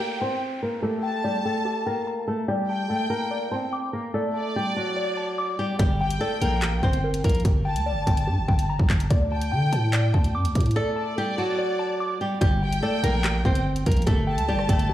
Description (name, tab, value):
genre	hip hop, drill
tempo	145 BPM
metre	4/4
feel	half-time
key	G harmonic minor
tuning	A4 = 440 Hz
part	flamenco guitar	melody	0.0-7.4, 10.8-14.9 s	F#3 to C5	-27 LUFS	equal	low-pass filter, tape echo
part	warm studio violin section	second line	0.0-14.9 s	D5 to A5	-32 LUFS	right 1 dB	tape echo
part	warbly dusty pluck	accompaniment	0.0-14.9 s	G4 to D6	-31 LUFS	left 3 dB	chorus, low-pass filter
part	downlifter	sound effects	0.0-2.5 s	none	-42 LUFS	right 1 dB	none
part	growling 808-style bass	bass	5.8-14.9 s	G1 to D3	-24 LUFS	equal	none
part	drill drum kit	drums	5.8-14.9 s	handclaps, hi-hat, kick drum, rim click	-22 LUFS	equal	none
room	little or no reverb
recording	played on a big sound system in a bare room, large studio reverb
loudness	-22 LUFS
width	side -13 dB against mid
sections	0.0-12.4 A section; 12.4-14.9 B section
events	filter sweep 0.0-5.8; break 10.8-12.4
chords	0.0 Gm; 2.5 Dsus4; 5.8 Gm; 9.1 Dsus4; 12.4 Gm